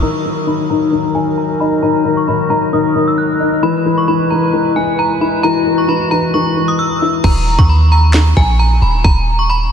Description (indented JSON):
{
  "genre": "hip hop, trap",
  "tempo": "133 BPM",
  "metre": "4/4",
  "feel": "half-time",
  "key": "Eb phrygian",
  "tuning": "A4 = 439 Hz",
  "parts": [
    { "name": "metallic FM bell", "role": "melody", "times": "0.0-9.7 s", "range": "Ab5 to Gb6", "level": "-18 LUFS", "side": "right 1 dB", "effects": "chorus, tremolo, low-pass filter, analog delay" },
    { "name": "dark concert grand piano", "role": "accompaniment", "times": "0.0-7.3 s", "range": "Eb3 to E4", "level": "-15 LUFS", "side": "left 3 dB", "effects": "lush chorus, low-pass filter" },
    { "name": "clear woodwind section", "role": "sustained chords", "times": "0.0-7.2 s", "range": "Gb3 to B4", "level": "-21 LUFS", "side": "equal", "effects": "low-pass filter" },
    { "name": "clean 808-style bass", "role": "bass", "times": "7.2-9.7 s", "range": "Eb1 to Eb2", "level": "-11 LUFS", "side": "equal", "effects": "none" },
    { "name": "trap drum kit", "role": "drums", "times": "7.2-9.2 s", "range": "crash cymbal, handclaps, kick drum, snare drum", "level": "-17 LUFS", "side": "equal", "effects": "vintage 12-bit sampler grit" }
  ],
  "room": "moderate huge ambient reverb, RT60 6.7 s",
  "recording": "dreamy mix soaked in reverb",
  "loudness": "-11 LUFS",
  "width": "side -8 dB against mid",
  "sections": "0.0-7.2 A section; 7.2-9.7 B section",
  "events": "filter sweep 0.0-7.2; hi-hats muted 7.2-9.7",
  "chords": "0.0 Ebm; 3.6 E; 7.2 Eb5"
}